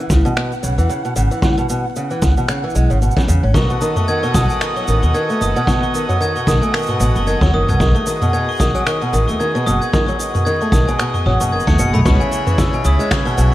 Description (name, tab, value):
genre	folktronica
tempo	113 BPM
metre	4/4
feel	swing 56% on 16ths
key	unclear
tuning	A4 = 441 Hz
part	fingerpicked old ladder-braced acoustic guitar	arpeggios	0.0-13.5 s	B2 to C#4	-20 LUFS	equal	digital delay
part	flickering grainy texture	texture	0.0-12.1 s	F#5	-30 LUFS	right 2 dB	built-in reverb
part	upright bass	bass	0.1-13.5 s	F#1 to E2	-16 LUFS	equal	tube saturation
part	kick drum	drums	0.1-13.2 s	none	-19 LUFS	equal	studio ambience
part	minimal click drum kit	drums	0.1-13.5 s	finger snaps, shaker, toms	-23 LUFS	equal	overdrive, studio ambience
part	glockenspiel with hard plastic mallets	second line	3.5-13.5 s	G#5 to C#7	-22 LUFS	left 2 dB	digital delay
part	hand-pumped harmonium	sustained chords	3.5-13.5 s	C#3 to D#5	-25 LUFS	right 2 dB	none
room	light reverb, small room ambience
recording	vinyl crackle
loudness	-14 LUFS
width	side -15 dB against mid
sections	0.0-12.1 A section; 12.1-13.5 B section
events	none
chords	0.0 C#m7; 3.6 B7; 12.1 C#m7